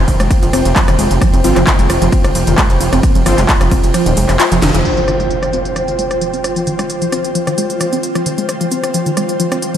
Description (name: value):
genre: driving peak-time techno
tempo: 132 BPM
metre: 4/4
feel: straight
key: F minor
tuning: A4 = 440 Hz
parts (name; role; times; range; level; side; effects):
- warbly dusty pluck; riff; 0.0-9.8 s; Eb3 to F4; -18 LUFS; equal; chorus, sidechain pumping, tape echo
- gritty driven synth bass; bass; 0.0-4.8 s; Eb1 to G1; -15 LUFS; equal; sidechain pumping
- ethereal airy pad; texture; 0.0-9.8 s; F4 to G5; -19 LUFS; right 1 dB; ensemble chorus, built-in reverb, sidechain pumping
- electronic kick drum; drums; 0.1-3.8 s; none; -14 LUFS; equal; overdrive, studio reverb
- techno drum kit; drums; 0.1-9.8 s; crash cymbal, handclaps, hi-hat, ride cymbal, rim click, snare drum; -19 LUFS; equal; overdrive, low-pass filter on hats, studio reverb, low-pass filter on snare, low-pass filter on cymbals
- rave stab; stabs; 1.4-3.4 s; F3 to F4; -21 LUFS; left 1 dB; none
- impact; sound effects; 4.9-6.7 s; none; -24 LUFS; equal; none
room: moderate lush hall reverb, RT60 2.3 s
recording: dreamy mix soaked in reverb, lossy compression artefacts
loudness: -11 LUFS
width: side -10 dB against mid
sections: 0.0-4.9 A section; 4.9-9.8 B section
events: drop 0.0-4.9; kick drops out 3.9-4.9; drum fill 4.6; band accent 4.6; impact 4.9-6.7; filter sweep on drum 4.9-9.8; filter sweep on synth arpeggio sound 4.9-9.8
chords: 0.0 F5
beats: 0.31 0.76 | 1.22 1.67 2.12 2.58 | 3.03 3.49 3.94 4.40 | 4.85 5.31 5.76 6.21 | 6.67 7.12 7.58 8.03 | 8.49 8.94 9.40